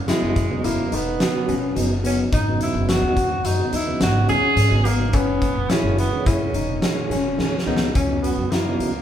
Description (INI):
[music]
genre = progressive instrumental, band music in an uneven meter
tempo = 107 BPM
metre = 5/4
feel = straight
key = unclear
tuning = A4 = 440 Hz
[part]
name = upright bass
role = bass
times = 0.0-9.0 s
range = E1 to G#2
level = -24 LUFS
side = equal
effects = none
[part]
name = warm tenor saxophone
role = melody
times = 0.1-9.0 s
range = G#3 to G#4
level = -25 LUFS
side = right 3 dB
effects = digital delay
[part]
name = tonewheel organ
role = accompaniment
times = 0.1-8.9 s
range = A#2 to F#4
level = -26 LUFS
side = right 3 dB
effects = chorus vibrato, slow rotary speaker
[part]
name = bell-like tine electric piano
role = arpeggios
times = 0.1-8.9 s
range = B3 to F#4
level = -25 LUFS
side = left 5 dB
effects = none
[part]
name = oversized low-tuned drum kit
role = drums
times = 0.1-8.9 s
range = hi-hat, kick drum, snare drum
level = -23 LUFS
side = equal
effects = none
[sound]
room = moderate large studio reverb, RT60 1.0 s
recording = band playing live in one room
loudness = -18 LUFS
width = side -10 dB against mid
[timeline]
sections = 0.0-8.0 A section; 8.0-9.0 B section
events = drum fill 7.4-8.0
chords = 0.0 F#7sus4; 2.3 G#m7; 5.1 F#7; 8.0 C#m7